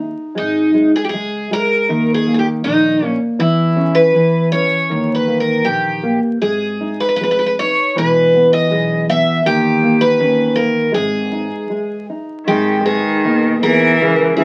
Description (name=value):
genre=fado-style ballad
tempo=79 BPM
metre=2/4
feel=rubato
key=G# harmonic minor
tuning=A4 = 440 Hz
part: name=nylon-string guitar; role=accompaniment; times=0.0-14.4 s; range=B2 to B4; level=-21 LUFS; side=equal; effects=none
part: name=upright bass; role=bass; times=0.0-14.4 s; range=E1 to E2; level=-25 LUFS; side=equal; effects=none
part: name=picked twelve-string acoustic guitar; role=melody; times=0.4-14.4 s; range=D#4 to E5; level=-18 LUFS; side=equal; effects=none
part: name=clear cello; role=second line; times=12.5-14.4 s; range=D#3 to E3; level=-18 LUFS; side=equal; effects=none
room=moderate studio ambience, RT60 0.5 s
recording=very old 78 rpm record, vinyl crackle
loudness=-15 LUFS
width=mono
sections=0.4-12.5 A section; 12.5-14.4 B section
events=break 11.7-12.5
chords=0.4 G#sus24; 1.9 D#5; 3.4 C#m/E; 4.9 D#5; 6.4 G#5; 8.0 E; 9.4 D#5; 10.9 G#5; 12.5 G#m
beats=| 0.37 1.14 | 1.90 2.65 | 3.40 4.15 | 4.90 5.65 | 6.42 7.21 | 7.97 8.71 | 9.45 10.19 | 10.94 11.71 | 12.48 13.24 | 14.01